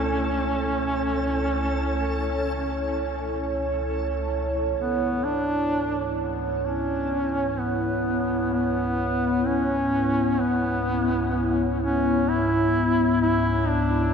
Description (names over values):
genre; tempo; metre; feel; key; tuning
dark ambient drone; free time; none; none; C# minor; A4 = 440 Hz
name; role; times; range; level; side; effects
warm duduk; melody; 0.0-14.1 s; B3 to E4; -26 LUFS; equal; ping-pong delay
deep dark ambient pad; sustained chords; 0.0-14.1 s; B3 to C#5; -26 LUFS; equal; chorus, built-in reverb
tubular bells; arpeggios; 0.0-4.8 s; none; barely audible; none; none
deep rumbling drone; drone; 0.0-14.1 s; C#2 to B2; -30 LUFS; equal; built-in reverb, phaser
backwards swelling texture; texture; 0.0-4.8 s; A3 to A4; -36 LUFS; equal; built-in reverb, ensemble chorus
room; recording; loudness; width
wet lush hall reverb, RT60 2.8 s; dreamy mix soaked in reverb; -22 LUFS; side -6 dB against mid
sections
0.0-4.8 A section; 4.8-14.1 B section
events
none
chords
0.0 A; 4.8 C#m7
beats
free time